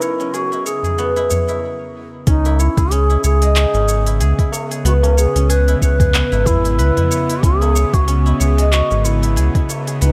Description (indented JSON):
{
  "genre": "organic downtempo",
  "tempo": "93 BPM",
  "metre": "4/4",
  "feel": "swing 56% on 16ths",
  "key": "C# dorian",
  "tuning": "A4 = 440 Hz",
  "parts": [
    { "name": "bright bass bansuri", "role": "melody", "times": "0.0-10.1 s", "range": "D#4 to B4", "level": "-23 LUFS", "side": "equal", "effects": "tape echo" },
    { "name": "bowed-like drone", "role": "sustained chords", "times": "0.0-10.1 s", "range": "C#3 to A#4", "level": "-28 LUFS", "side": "equal", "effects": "built-in reverb, sidechain pumping" },
    { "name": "guzheng", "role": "arpeggios", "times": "0.0-10.1 s", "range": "G#3 to C#5", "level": "-24 LUFS", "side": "equal", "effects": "tape echo" },
    { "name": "organic electronic drum kit", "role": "drums", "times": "0.0-10.1 s", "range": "handclaps, hi-hat, shaker", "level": "-26 LUFS", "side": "equal", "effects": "small room ambience" },
    { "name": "tabla", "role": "percussion", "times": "0.0-9.8 s", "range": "none", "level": "-28 LUFS", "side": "equal", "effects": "none" },
    { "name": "round analog bass", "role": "bass", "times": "2.3-10.1 s", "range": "G#1 to C#2", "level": "-17 LUFS", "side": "equal", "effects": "sidechain pumping" },
    { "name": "electronic kick drum", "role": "drums", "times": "2.3-9.7 s", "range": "none", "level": "-17 LUFS", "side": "equal", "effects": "small room ambience" }
  ],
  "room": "light reverb, studio ambience",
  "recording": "none",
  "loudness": "-16 LUFS",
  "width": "mono",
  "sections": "0.0-2.3 A section; 2.3-10.1 B section",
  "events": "filter sweep on synth drone 0.0-2.3; stop 1.6-2.3",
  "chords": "0.0 C#m"
}